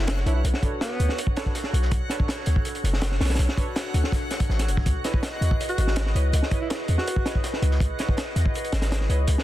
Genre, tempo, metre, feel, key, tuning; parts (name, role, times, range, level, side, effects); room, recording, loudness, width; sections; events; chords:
drum and bass, jungle; 163 BPM; 4/4; straight; B dorian; A4 = 440 Hz
breathy alto saxophone; melody; 0.0-1.2, 5.7-7.3 s; B3 to F#4; -34 LUFS; equal; dub echo
warm 808-style bass; bass; 0.0-9.4 s; F#1 to E2; -22 LUFS; equal; tube saturation
backwards swelling texture; texture; 0.0-9.4 s; F#4 to F#5; -38 LUFS; equal; built-in reverb
crunchy breakbeat drum kit; drums; 0.1-9.4 s; hi-hat, kick drum, snare drum; -26 LUFS; equal
snare drum and shaker; drums; 0.1-9.4 s; -41 LUFS; left 2 dB
deep mellow chord stab; stabs; 0.3-9.3 s; D4 to D#5; -36 LUFS; right 4 dB; chorus, dub echo
studio ambience; dense, heavily limited modern master; -22 LUFS; side -14 dB against mid
0.0-9.4 A section
0.0 Bm9; 4.9 C#m9